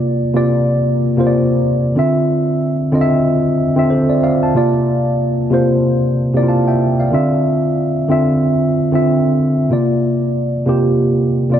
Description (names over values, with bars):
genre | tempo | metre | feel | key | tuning
R&B | 93 BPM | 4/4 | swing 59% on 16ths | unclear | A4 = 439 Hz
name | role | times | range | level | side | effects
mellow tine electric piano | solo | 0.0-11.6 s | C3 to A5 | -13 LUFS | equal | analog chorus
room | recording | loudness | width
little or no reverb | none | -13 LUFS | side -9 dB against mid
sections
0.0-11.6 A section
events
none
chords
0.0 C9sus4; 2.0 Dm9; 4.5 C9sus4; 7.1 Dm9; 9.7 C9sus4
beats
0.02 0.66 1.31 | 1.95 2.60 3.24 3.89 | 4.53 5.18 5.82 6.47 | 7.11 7.76 8.40 9.05 | 9.69 10.34 10.98